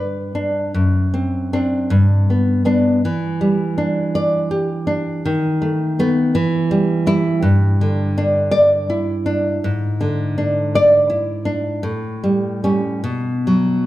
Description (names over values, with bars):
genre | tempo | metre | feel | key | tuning
romantic piece for solo classical guitar | 47-57 BPM (dotted quarters) | 6/8 | rubato | unclear | A4 = 443 Hz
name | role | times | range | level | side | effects
nylon-string guitar | solo | 0.0-13.9 s | F#2 to D5 | -15 LUFS | equal | none
room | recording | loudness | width
wet recital hall reverb, RT60 1.8 s | none | -15 LUFS | side -15 dB against mid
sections
0.0-13.9 A section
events
none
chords
0.0 G; 0.7 D7/F#; 1.9 G; 3.1 Em7; 5.3 B7/D#; 6.4 Em; 7.5 Em7/G; 9.6 E7/G#; 11.9 A7; 13.1 B5